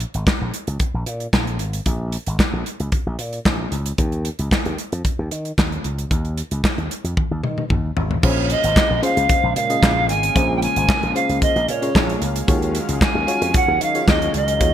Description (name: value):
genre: early-eighties boogie funk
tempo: 113 BPM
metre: 4/4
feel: straight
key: Bb minor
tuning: A4 = 440 Hz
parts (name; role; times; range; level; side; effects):
- slap bass with an envelope filter; bass; 0.0-14.7 s; Ab1 to Eb3; -23 LUFS; equal; none
- modern studio drum kit; drums; 0.0-14.7 s; crash cymbal, handclaps, hi-hat, kick drum, snare drum, toms; -20 LUFS; equal; gated reverb
- bright reedy polished pan flute; melody; 8.2-14.7 s; Db5 to Ab5; -20 LUFS; right 2 dB; none
- FM electric piano with soft pad layer; accompaniment; 8.2-14.7 s; Db4 to Eb5; -26 LUFS; left 2 dB; chorus
- brassy analog pad; sustained chords; 8.2-14.7 s; Db3 to F5; -28 LUFS; right 1 dB; chorus
room: light reverb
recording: bright 1980s-style digital production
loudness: -17 LUFS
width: side -10 dB against mid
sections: 0.0-8.2 A section; 8.2-14.7 B section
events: drum fill 7.2-8.2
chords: 0.0 N.C.; 8.2 Bbm9; 12.5 Ebm11